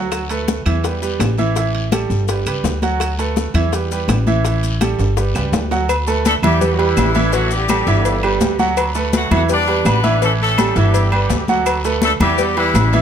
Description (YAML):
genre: latin, salsa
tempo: 166 BPM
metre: 4/4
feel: straight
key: D major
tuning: A4 = 440 Hz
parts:
  - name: bright baby grand piano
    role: accompaniment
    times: 0.0-13.0 s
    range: E3 to F#5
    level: -20 LUFS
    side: right 5 dB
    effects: none
  - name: upright bass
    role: bass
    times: 0.0-13.0 s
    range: G1 to E2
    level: -19 LUFS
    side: equal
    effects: none
  - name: bongos and cowbell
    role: percussion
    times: 0.1-13.0 s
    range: none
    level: -26 LUFS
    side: left 9 dB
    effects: none
  - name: claves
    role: percussion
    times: 0.1-12.9 s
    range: none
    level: -33 LUFS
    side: right 2 dB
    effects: none
  - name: congas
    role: percussion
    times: 0.1-13.0 s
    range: none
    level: -22 LUFS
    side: left 4 dB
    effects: none
  - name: guiro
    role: percussion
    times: 0.1-13.0 s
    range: none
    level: -33 LUFS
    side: left 6 dB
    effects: none
  - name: maracas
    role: percussion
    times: 0.1-13.0 s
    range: none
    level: -32 LUFS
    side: left 13 dB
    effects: none
  - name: timbales and agogo bells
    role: percussion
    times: 0.1-12.9 s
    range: none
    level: -25 LUFS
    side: right 3 dB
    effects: none
  - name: brilliant horn section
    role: melody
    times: 6.3-13.0 s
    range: E3 to D5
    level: -20 LUFS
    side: left 3 dB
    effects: tape echo
room: light reverb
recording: close, detailed microphones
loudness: -14 LUFS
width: side -8 dB against mid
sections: 0.0-5.9 A section; 5.9-13.0 B section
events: drum fill 5.0-5.9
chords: 0.1 D6; 0.8 Em; 1.6 A5; 2.3 G; 3.0 D6; 3.7 Em; 4.5 A5; 5.2 G; 5.9 D5; 6.6 Em; 7.3 A5; 8.1 G6; 8.8 D6; 9.5 Em7; 10.2 A7; 10.9 G6; 11.7 D6; 12.4 Em